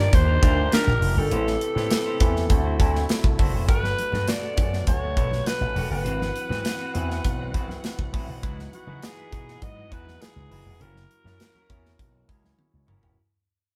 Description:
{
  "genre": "polished 1980s jazz-funk pop",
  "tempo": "101 BPM",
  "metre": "4/4",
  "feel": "straight",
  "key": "unclear",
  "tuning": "A4 = 440 Hz",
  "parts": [
    { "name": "growling alto saxophone", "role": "melody", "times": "0.0-12.6 s", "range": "F#4 to D#5", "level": "-31 LUFS", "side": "equal", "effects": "none" },
    { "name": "barky tine electric piano", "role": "accompaniment", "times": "0.0-13.2 s", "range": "G3 to C#5", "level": "-37 LUFS", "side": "equal", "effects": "overdrive" },
    { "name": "warm studio string section", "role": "sustained chords", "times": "0.0-13.2 s", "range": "B2 to F#5", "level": "-42 LUFS", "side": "equal", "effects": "none" },
    { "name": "semi-hollow electric guitar", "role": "riff", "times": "0.0-13.2 s", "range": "B3 to C5", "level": "-38 LUFS", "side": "equal", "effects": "none" },
    { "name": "slap bass with an envelope filter", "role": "bass", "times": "0.0-13.1 s", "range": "E1 to C#3", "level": "-28 LUFS", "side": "equal", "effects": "none" },
    { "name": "modern studio drum kit", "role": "drums", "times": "0.1-13.2 s", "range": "hi-hat, kick drum, snare drum, toms", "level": "-27 LUFS", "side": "equal", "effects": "none" },
    { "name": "congas", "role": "percussion", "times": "3.7-13.0 s", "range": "none", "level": "-42 LUFS", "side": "equal", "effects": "none" }
  ],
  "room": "moderate studio reverb, RT60 0.8 s",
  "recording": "band playing live in one room",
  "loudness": "-23 LUFS",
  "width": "mono",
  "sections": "0.0-13.2 A section",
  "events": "fade-out 0.0-13.2; drum fill 12.6-13.2",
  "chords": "0.0 D#maj7; 1.3 Am7; 2.5 D9; 3.7 Gmaj9; 6.1 G#7alt; 8.4 C#m11; 10.8 F#7",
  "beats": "0.13 0.72 | 1.31 1.91 2.50 3.09 | 3.69 4.28 4.87 5.47 | 6.06 6.65 7.25 7.84 | 8.43 9.03 9.62 10.21 | 10.80 11.40 11.99 12.58"
}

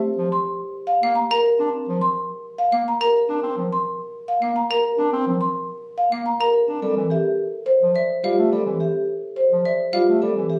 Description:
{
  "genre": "classical, minimalist pattern music",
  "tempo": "106 BPM",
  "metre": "3/4",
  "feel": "straight",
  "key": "G dorian",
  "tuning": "A4 = 443 Hz",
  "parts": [
    { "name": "vibraphone with soft mallets", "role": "arpeggios", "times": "0.0-10.6 s", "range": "C4 to Bb4", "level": "-24 LUFS", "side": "equal", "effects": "none" },
    { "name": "warm bass clarinet", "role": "accompaniment", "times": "0.2-10.5 s", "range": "E3 to D4", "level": "-29 LUFS", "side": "equal", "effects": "none" },
    { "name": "marimba with soft mallets", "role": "melody", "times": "0.3-10.6 s", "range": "G4 to C6", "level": "-24 LUFS", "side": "equal", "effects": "none" },
    { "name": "xylophone with plastic mallets", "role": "arpeggios", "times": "1.0-10.1 s", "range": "E5 to Bb5", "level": "-29 LUFS", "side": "equal", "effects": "none" }
  ],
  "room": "light reverb",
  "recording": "recorded on a phone in the room, club reverb, compression",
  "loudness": "-21 LUFS",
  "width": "mono",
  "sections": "0.0-6.8 A section; 6.8-10.6 A section",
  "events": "none",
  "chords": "0.0 Bb5; 6.8 G7sus4",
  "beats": "| 0.03 0.60 1.16 | 1.73 2.30 2.86 | 3.43 3.99 4.56 | 5.13 5.69 6.26 | 6.82 7.39 7.96 | 8.52 9.09 9.65 | 10.22"
}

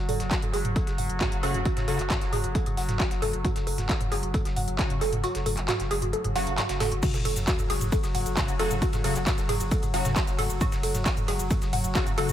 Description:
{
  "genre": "driving peak-time techno",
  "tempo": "134 BPM",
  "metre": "4/4",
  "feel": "straight",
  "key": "F# minor",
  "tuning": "A4 = 436 Hz",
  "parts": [
    { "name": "saturated sub bass", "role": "bass", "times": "0.0-12.3 s", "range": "F#1", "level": "-32 LUFS", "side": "equal", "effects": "sidechain pumping, low-pass filter" },
    { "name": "analog drone", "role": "drone", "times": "0.0-12.3 s", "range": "F#3", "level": "-35 LUFS", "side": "left 2 dB", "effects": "chorus, sidechain pumping" },
    { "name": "woody wave-folded pluck", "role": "riff", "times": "0.1-12.3 s", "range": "F#4 to F#5", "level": "-31 LUFS", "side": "right 1 dB", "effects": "wide subtle chorus, sidechain pumping, analog delay" },
    { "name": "breakbeat sampler-style drum kit", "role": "drums", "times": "0.1-12.3 s", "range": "hi-hat, snare drum", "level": "-40 LUFS", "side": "right 1 dB", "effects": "sidechain pumping on hats, high-pass filter on hats, high-pass filter on snare, analog delay" },
    { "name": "techno drum kit", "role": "drums", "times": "0.1-12.3 s", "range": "crash cymbal, handclaps, hi-hat, ride cymbal, shaker, toms", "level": "-31 LUFS", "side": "equal", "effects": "overdrive, analog delay" },
    { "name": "electronic kick drum", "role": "drums", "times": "0.3-12.0 s", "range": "none", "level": "-27 LUFS", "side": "equal", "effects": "overdrive" },
    { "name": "rave stab", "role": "stabs", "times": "1.2-2.0, 4.8-12.3 s", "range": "C#3 to F#4", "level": "-33 LUFS", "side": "left 2 dB", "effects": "chorus, built-in reverb, sidechain pumping, analog delay" },
    { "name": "swell and sub drop", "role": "sound effects", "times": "6.3-8.8 s", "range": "none", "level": "-37 LUFS", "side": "right 1 dB", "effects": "none" }
  ],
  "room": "light reverb",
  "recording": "echo-heavy mix",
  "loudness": "-24 LUFS",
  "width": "side -11 dB against mid",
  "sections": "0.0-7.0 A section; 7.0-12.3 B section",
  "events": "kick drops out 5.2-7.0; swell 6.3-7.0; drop 7.0-12.3; impact 7.0-8.8",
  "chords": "0.0 F#5",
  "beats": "0.31 0.76 1.21 | 1.66 2.10 2.55 3.00 | 3.45 3.89 4.34 4.79 | 5.24 5.68 6.13 6.58 | 7.03 7.48 7.92 8.37 | 8.82 9.27 9.71 10.16 | 10.61 11.06 11.51 11.95"
}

